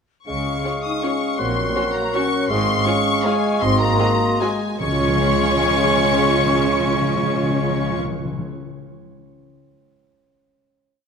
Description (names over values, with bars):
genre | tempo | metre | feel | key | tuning
classical, orchestral ballroom waltz | 142-174 BPM | 3/4 | rubato | Db major | A4 = 441 Hz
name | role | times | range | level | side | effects
warm symphonic violin section | melody | 0.3-8.0 s | Ab5 to Eb6 | -24 LUFS | left 3 dB | none
clear oboe | second line | 0.3-8.0 s | Db5 to Gb5 | -29 LUFS | equal | none
mellow clarinet | second line | 0.3-8.0 s | F4 to Bb4 | -29 LUFS | left 1 dB | none
mellow small flute group | second line | 0.3-8.0 s | C6 to Db6 | -27 LUFS | left 5 dB | none
mellow bassoon | accompaniment | 0.3-8.0 s | Gb3 to Ab3 | -27 LUFS | right 4 dB | none
mellow French horn section | sustained chords | 0.3-8.0 s | Ab3 to Eb4 | -25 LUFS | left 3 dB | none
rich studio cello section | bass | 0.3-8.0 s | Ab2 to Db3 | -26 LUFS | right 3 dB | none
rich symphonic double bass section | bass | 0.3-8.0 s | Ab1 to Db2 | -27 LUFS | right 4 dB | none
warm symphonic violin section | second line | 0.6-8.0 s | Gb4 to F5 | -29 LUFS | left 3 dB | none
rich symphonic viola section | accompaniment | 0.6-8.0 s | C4 to Gb4 | -28 LUFS | right 4 dB | none
timpani | percussion | 3.6-8.5 s | Ab2 to Db3 | -27 LUFS | left 3 dB | none
room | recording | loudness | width
moderate scoring stage reverb, RT60 2.0 s | none | -17 LUFS | side -6 dB against mid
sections
0.3-4.8 A section; 4.8-7.2 final chord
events
slowing down 1.9-4.8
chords
0.3 Db; 1.4 Gb/Bb; 2.5 Db/Ab; 3.6 Ab7; 4.8 Db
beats
| 0.27 0.64 1.03 | 1.39 1.76 2.14 | 2.50 2.87 3.25 | 3.62 4.00 4.41 | 4.80 5.20 5.62 | 6.01 6.41 6.83